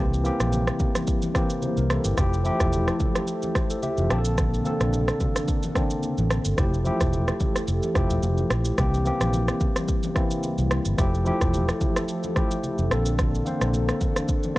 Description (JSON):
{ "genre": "afrobeats", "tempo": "109 BPM", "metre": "4/4", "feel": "swing 55% on 16ths", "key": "F major", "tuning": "A4 = 441 Hz", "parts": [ { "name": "tine electric piano", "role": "accompaniment", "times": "0.0-14.6 s", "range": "C3 to A5", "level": "-27 LUFS", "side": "left 1 dB", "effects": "medium tremolo" }, { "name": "hollow soft pad", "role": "sustained chords", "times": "0.0-14.6 s", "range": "C3 to A4", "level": "-32 LUFS", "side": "left 1 dB", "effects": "chorus" }, { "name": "vintage muted fingered electric bass", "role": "bass", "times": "0.0-13.9 s", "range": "E1 to C2", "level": "-24 LUFS", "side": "equal", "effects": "none" }, { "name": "afro-pop drum kit", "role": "drums", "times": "0.1-14.6 s", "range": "kick drum, rim click, shaker", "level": "-26 LUFS", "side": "equal", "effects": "none" }, { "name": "congas", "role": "percussion", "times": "0.3-14.6 s", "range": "none", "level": "-35 LUFS", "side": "equal", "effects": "none" } ], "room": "little or no reverb", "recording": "dry, gritty hardware recording, cassette tape", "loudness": "-21 LUFS", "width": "side -18 dB against mid", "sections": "0.0-14.6 A section", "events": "tine electric piano fill 3.6-4.4", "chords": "0.0 C7; 2.2 Fmaj9; 4.1 Bbmaj9; 6.6 Fmaj9; 8.8 C7; 11.0 Fmaj9; 12.9 Bbmaj9" }